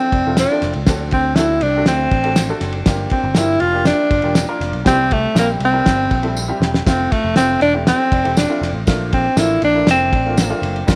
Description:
uptempo 1960s-style soul; 120 BPM; 4/4; straight; F major; A4 = 441 Hz
clear alto saxophone; melody; 0.0-10.6 s; A3 to F4; -19 LUFS; equal; tape echo
warm baby grand piano; accompaniment; 0.0-11.0 s; G3 to Bb4; -27 LUFS; equal
picked electric bass; bass; 0.1-11.0 s; E1 to D2; -25 LUFS; equal
cloth-damped thuddy drum kit; drums; 0.1-11.0 s; kick drum, ride cymbal, snare drum; -21 LUFS; equal
tambourine; percussion; 0.4-11.0 s; -34 LUFS; equal
mellow horn section; second line; 4.9-5.2 s; E3 to G4; -32 LUFS; equal
light reverb, studio reverb; -16 LUFS; mono
0.0-11.0 A section
band accent 4.9-6.9; drum fill 6.4-6.9
0.0 Fmaj7; 0.9 D7; 2.9 Gm7; 4.9 C; 6.9 Fmaj7; 8.9 Bbmaj7

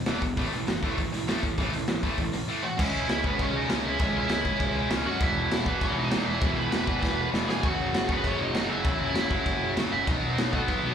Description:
punk rock; 198 BPM; 4/4; straight; A4 = 440 Hz
tight distorted guitar; riff; 0.0-10.9 s; E2 to C#4; -29 LUFS; equal; distortion, slapback echo
fuzz picked electric bass; bass; 0.1-10.9 s; E1 to A2; -33 LUFS; equal; overdrive
raw garage drum kit; drums; 0.1-10.8 s; crash cymbal, hi-hat, kick drum, snare drum; -29 LUFS; equal
overdriven electric guitar; melody; 2.6-10.9 s; A3 to B5; -30 LUFS; right 2 dB; slapback echo, ping-pong delay
small room reverb; live gig heard through the venue's PA, club ambience; -24 LUFS; side -8 dB against mid
0.0-2.8 A section; 2.8-10.9 B section
drum fill 7.0-7.6
0.4 A5; 2.8 C#m; 5.2 E5; 7.6 F#5; 10.1 B

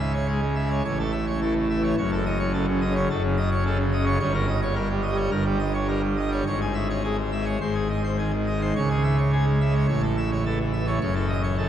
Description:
classical, organ toccata; 106 BPM; 4/4; straight; C# minor; A4 = 441 Hz
pipe organ, full organ; solo; 0.0-11.7 s; F#1 to E5; -22 LUFS; equal
wet cathedral reverb, RT60 4.7 s; dark, warm production; -22 LUFS; side -10 dB against mid
0.0-11.7 A section
0.0 C#m; 0.8 A; 2.0 D#m7b5/F#; 4.2 D#7/G; 6.5 C#m/G#; 7.6 G#; 8.8 C#m; 9.9 A; 11.0 D#m7b5/F#

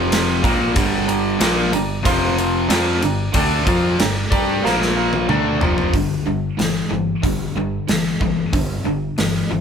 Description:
classic rock; 92 BPM; 4/4; straight; G dorian; A4 = 443 Hz
bright grand piano; accompaniment; 0.0-5.9 s; Bb4 to C6; -26 LUFS; right 3 dB
overdriven electric guitar; riff; 0.0-9.6 s; F2 to G4; -21 LUFS; left 5 dB
overdriven electric guitar; riff; 0.0-9.6 s; F2 to G4; -23 LUFS; right 6 dB
overdriven picked electric bass; bass; 0.0-9.6 s; F1 to G2; -25 LUFS; right 1 dB
gated 80s drum kit; drums; 0.1-9.3 s; hi-hat, kick drum, ride cymbal, snare drum, toms; -21 LUFS; right 1 dB
moderate large studio reverb, RT60 1.1 s; band playing live in one room; -16 LUFS; side -7 dB against mid
0.0-5.9 A section; 5.9-9.6 B section
drum fill 4.6-5.9
0.4 Gm; 2.0 F5; 2.7 Gm; 4.6 Bb5; 5.3 Gm; 5.9 G5

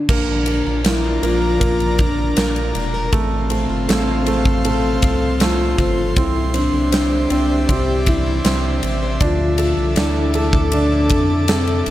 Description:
pop ballad; 79 BPM; 4/4; straight; A4 = 440 Hz
soft octave-layered synth lead; melody; 0.0-11.9 s; C4 to G4; -21 LUFS; left 1 dB; chorus, tremolo
warm grand piano; accompaniment; 0.1-11.9 s; A3 to A4; -24 LUFS; right 4 dB
airy breathy pad; sustained chords; 0.5-11.9 s; F3 to D6; -26 LUFS; equal; chorus
picked plugged-in steel-string acoustic guitar; arpeggios; 0.1-11.9 s; A2 to C5; -27 LUFS; left 4 dB
saturated sub bass; bass; 0.1-11.9 s; E1 to F2; -21 LUFS; equal
huge arena drum kit; drums; 0.1-11.9 s; crash cymbal, kick drum, ride cymbal, snare drum; -20 LUFS; equal
small room ambience; -15 LUFS; side -14 dB against mid
0.1-11.9 A section
0.1 Bb; 3.1 F; 6.2 Cadd9; 9.2 Dmadd9

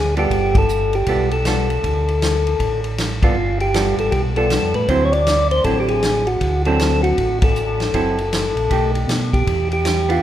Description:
soul jazz organ trio; 157 BPM; 4/4; swing 64% on 8ths; D mixolydian; A4 = 439 Hz
percussive tonewheel organ; melody; 0.0-10.2 s; F4 to D5; -19 LUFS; equal; slow rotary speaker
mellow tonewheel organ; bass; 0.0-10.2 s; F#1 to B2; -21 LUFS; equal; slow rotary speaker
archtop guitar, miked and amplified; accompaniment; 0.2-10.2 s; D3 to A4; -24 LUFS; right 2 dB
vintage drum kit; drums; 0.2-10.2 s; hi-hat, kick drum, ride cymbal, snare drum; -22 LUFS; left 1 dB
moderate concert hall reverb, RT60 2.2 s; recorded in a church or concert hall; -16 LUFS; side -11 dB against mid
0.0-10.2 A section
band accent 0.5, 3.2, 7.4
0.3 G9; 1.8 D5; 3.4 G9; 4.9 D9; 7.9 F#m7b5; 8.7 Baug7; 9.5 Em7

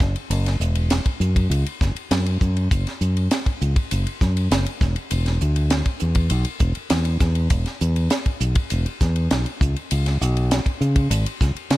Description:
electric jazz fusion; 100 BPM; 4/4; straight; A4 = 440 Hz
fingered electric bass; bass; 0.0-11.8 s; E1 to C#3; -20 LUFS; equal
tight funk drum kit; drums; 0.0-11.8 s; hi-hat, kick drum, ride cymbal, snare drum; -23 LUFS; equal
little or no reverb; -19 LUFS; side -17 dB against mid
0.0-11.8 A section

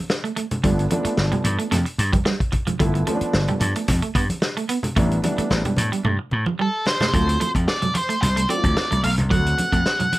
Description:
funk; 111 BPM; 4/4; straight; D mixolydian; A4 = 438 Hz
electric guitar at the edge of break-up; riff; 0.1-10.2 s; F3 to C4; -26 LUFS; right 4 dB
warm soul drum kit; drums; 0.1-10.2 s; hi-hat, kick drum, snare drum; -24 LUFS; equal
congas; percussion; 0.1-10.2 s; -28 LUFS; right 1 dB
dark upright piano; stabs; 0.6-10.1 s; E3 to F#4; -26 LUFS; equal; slapback echo
vintage slap bass; bass; 0.6-9.8 s; G1 to A2; -21 LUFS; equal
octave-fuzz lead guitar; melody; 6.6-10.2 s; A4 to F#5; -23 LUFS; equal; distortion
light reverb; -18 LUFS; side -17 dB against mid
0.0-7.1 A section; 7.1-10.2 B section
drum fill 6.0-7.1
0.0 G9; 5.0 A9sus4; 7.1 D7#9

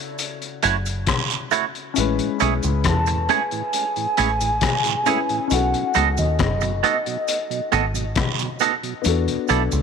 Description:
lovers rock reggae; 68 BPM; 4/4; straight; A major; A4 = 440 Hz
dark grand piano; accompaniment; 0.0-9.8 s; C#3 to B4; -27 LUFS; left 12 dB; tape echo
crunchy breakbeat drum kit; drums; 0.2-9.8 s; hi-hat, kick drum, rim click; -25 LUFS; left 5 dB
cabasa and guiro; percussion; 0.2-9.8 s; -30 LUFS; right 16 dB
twangy electric guitar; stabs; 0.6-9.6 s; A3 to D#5; -23 LUFS; right 15 dB; lush chorus
deep dub fingered electric bass; bass; 0.6-9.8 s; F#1 to E2; -22 LUFS; equal; tube saturation
mellow tonewheel organ; accompaniment; 2.2-9.8 s; E2 to E4; -32 LUFS; right 9 dB; chorus vibrato, slow rotary speaker, tape echo
hollow clarinet-like synth lead; melody; 2.9-8.6 s; D#5 to A5; -25 LUFS; equal; chorus, tape echo
light reverb, studio ambience; 1960s-style stereo with parts hard left and right; -19 LUFS; side -6 dB against mid
0.0-9.8 A section
0.0 Dmaj9 (rootless); 2.0 Amaj7; 5.5 B7; 9.1 E7sus4

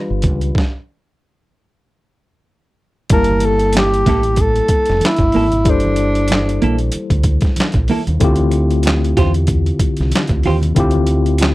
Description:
R&B, neo-soul; 94 BPM; 4/4; swing 55% on 16ths; G dorian; A4 = 440 Hz
tine electric piano; accompaniment; 0.0-11.5 s; D3 to A5; -20 LUFS; left 3 dB; medium stereo tremolo
deep dub fingered electric bass; bass; 0.1-11.5 s; F1 to E2; -17 LUFS; equal
boom bap sampler-style drum kit; drums; 0.2-11.5 s; handclaps, hi-hat, kick drum, snare drum; -17 LUFS; equal; overdrive
congas; percussion; 0.2-11.5 s; -30 LUFS; right 4 dB
breathy tenor saxophone; melody; 3.1-7.0 s; D4 to Bb4; -16 LUFS; equal
semi-hollow electric guitar; second line; 3.8-11.5 s; Bb3 to C5; -18 LUFS; right 4 dB
light reverb; dry, close 1970s-style studio recording; -13 LUFS; side -18 dB against mid
0.0-3.1 A section; 3.1-11.5 B section
stop 0.5-3.1
0.0 G7; 0.5 N.C.; 3.1 Gm69; 8.2 Dm11

